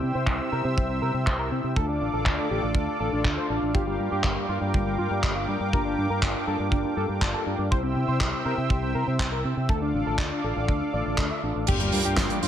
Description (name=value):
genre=italo disco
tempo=121 BPM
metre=4/4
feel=straight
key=G dorian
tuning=A4 = 439 Hz
part: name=wide unison lead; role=melody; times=0.0-12.5 s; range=G3 to E5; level=-30 LUFS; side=equal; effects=digital delay
part: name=warm analog pad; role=sustained chords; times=0.0-12.5 s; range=A4 to E6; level=-32 LUFS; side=right 1 dB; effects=chorus, tremolo
part: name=mellow synth brass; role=stabs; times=0.0-12.5 s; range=G2 to A4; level=-31 LUFS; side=left 3 dB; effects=chorus
part: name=fingered electric bass with an envelope filter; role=bass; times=0.0-12.5 s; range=G1 to C3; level=-30 LUFS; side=equal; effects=none
part: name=damped 70s drum kit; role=drums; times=0.3-12.5 s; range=crash cymbal, handclaps, hi-hat, snare drum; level=-30 LUFS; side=equal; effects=low-pass filter on hats, studio ambience, low-pass filter on cymbals, low-pass filter on snare, low-pass filter on room, gated reverb
part: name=kick drum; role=drums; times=0.3-12.3 s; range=none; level=-26 LUFS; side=equal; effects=studio ambience
part: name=sub drop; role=sound effects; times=11.7-12.5 s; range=none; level=-33 LUFS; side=equal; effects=none
room=light reverb, small room ambience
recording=none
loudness=-23 LUFS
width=side -10 dB against mid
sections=0.0-11.7 A section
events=impact 11.7-12.5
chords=0.0 C; 1.8 Dm; 3.7 Gm7; 7.7 C; 9.7 Dm; 11.7 Gm7